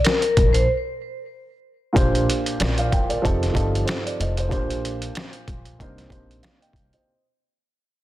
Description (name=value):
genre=hip hop, boom-bap hip-hop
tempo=94 BPM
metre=4/4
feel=swing 57% on 16ths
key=Bb major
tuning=A4 = 440 Hz
part: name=vibraphone with hard mallets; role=melody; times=0.0-0.7 s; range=Bb4 to C5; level=-22 LUFS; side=left 2 dB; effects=high-pass filter, low-pass filter, ping-pong delay
part: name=trip hop sampler-style drum kit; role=drums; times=0.0-7.1 s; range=hi-hat, kick drum, snare drum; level=-23 LUFS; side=equal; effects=none
part: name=upright bass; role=bass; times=0.4-6.9 s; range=F1 to C2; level=-24 LUFS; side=equal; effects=none
part: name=dark upright piano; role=accompaniment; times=1.9-7.2 s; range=Bb2 to G5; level=-24 LUFS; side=right 1 dB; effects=high-pass filter, low-pass filter
room=light reverb, small room ambience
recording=dense, heavily limited modern master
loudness=-19 LUFS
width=side -15 dB against mid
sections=0.0-2.0 A section; 2.0-7.1 B section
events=break 0.0-2.0; fade-out 2.0-7.1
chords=0.0 N.C.; 2.0 Bb69; 3.2 F9; 4.5 Bb69; 5.8 Cm9